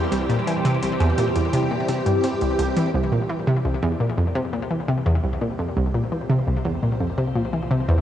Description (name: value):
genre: ambient, sequencer-driven space music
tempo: 85 BPM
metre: 4/4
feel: straight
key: unclear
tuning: A4 = 440 Hz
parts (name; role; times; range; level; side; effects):
- phased string machine; sustained chords; 0.0-8.0 s; E3 to C5; -26 LUFS; equal; ensemble chorus, phaser
- analog pluck; riff; 0.0-8.0 s; C2 to E3; -21 LUFS; equal; chorus, ping-pong delay
- electronic hi-hat and woodblock; percussion; 0.1-2.9 s; none; -37 LUFS; equal; ping-pong delay
- fat analog bass; bass; 2.9-8.0 s; C2; -39 LUFS; equal; none
room: wet huge ambient reverb, RT60 8.4 s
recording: worn, warbling old tape, cassette tape, warbly pitch drift, nothing above 10.4 kHz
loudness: -20 LUFS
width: side -11 dB against mid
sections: 0.0-2.9 A section; 2.9-8.0 B section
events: fade-in on string machine 2.9-8.0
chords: 0.0 C; 2.9 C7sus4